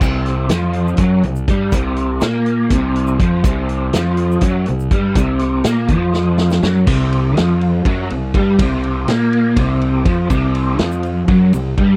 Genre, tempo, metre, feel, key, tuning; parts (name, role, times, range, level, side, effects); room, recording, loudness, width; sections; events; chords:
psychedelic rock; 245 BPM (eighths); 7/8; straight; A4 = 440 Hz
crunchy overdriven guitar; riff; 0.0-12.0 s; C3 to Bb3; -18 LUFS; equal; rotary speaker
fuzz fingered electric bass; bass; 0.0-12.0 s; C2 to Bb2; -22 LUFS; equal; overdrive
vintage drum kit; drums; 0.0-11.9 s; crash cymbal, hi-hat, kick drum, ride cymbal, snare drum; -21 LUFS; equal
egg shaker; percussion; 0.0-6.7, 10.3-11.7 s; -46 LUFS; equal
little or no reverb; dry, close 1970s-style studio recording; -16 LUFS; mono
0.0-6.9 A section; 6.9-12.0 B section
drum fill 6.1-6.9
0.0 C5